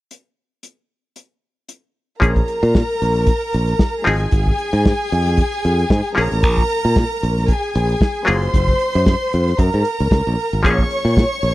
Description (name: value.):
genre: disco.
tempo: 114 BPM.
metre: 4/4.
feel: straight.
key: Bb minor.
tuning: A4 = 438 Hz.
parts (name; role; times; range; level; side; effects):
warm soul drum kit; drums; 0.1-11.5 s; hi-hat, kick drum, snare drum; -16 LUFS; equal; none.
warm studio violin section; second line; 2.2-11.5 s; Ab4 to Db6; -20 LUFS; equal; none.
muted clav; accompaniment; 2.2-11.5 s; F3 to Ab4; -20 LUFS; left 2 dB; overdrive.
modern bright fingered electric bass; bass; 2.2-11.5 s; Gb1 to Bb2; -18 LUFS; equal; none.
room: small room ambience.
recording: dry, close 1970s-style studio recording.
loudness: -15 LUFS.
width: side -17 dB against mid.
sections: 0.1-2.2 A section; 2.2-11.5 B section.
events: none.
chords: 0.1 N.C.; 2.2 Bbm7; 4.1 Fm7/Ab; 6.2 Bbm7; 8.3 Gbmaj9; 10.6 Bbm7.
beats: | 0.10 0.63 1.16 1.69 | 2.21 2.74 3.27 3.80 | 4.33 4.85 5.38 5.91 | 6.43 6.96 7.49 8.01 | 8.54 9.06 9.59 10.11 | 10.64 11.16.